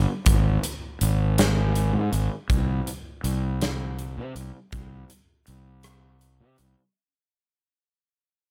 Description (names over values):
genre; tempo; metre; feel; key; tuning
quiet-loud alternative rock; 54 BPM (dotted quarters); 6/8; straight; unclear; A4 = 440 Hz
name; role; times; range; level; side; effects
fuzz fingered electric bass; bass; 0.0-6.7 s; Ab1 to C3; -26 LUFS; equal; overdrive
big rock drum kit; drums; 0.3-6.8 s; hi-hat, kick drum, rim click, snare drum; -28 LUFS; equal; none
room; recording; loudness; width
little or no reverb; none; -25 LUFS; mono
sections
0.0-7.0 A section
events
fade-out 0.0-7.0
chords
none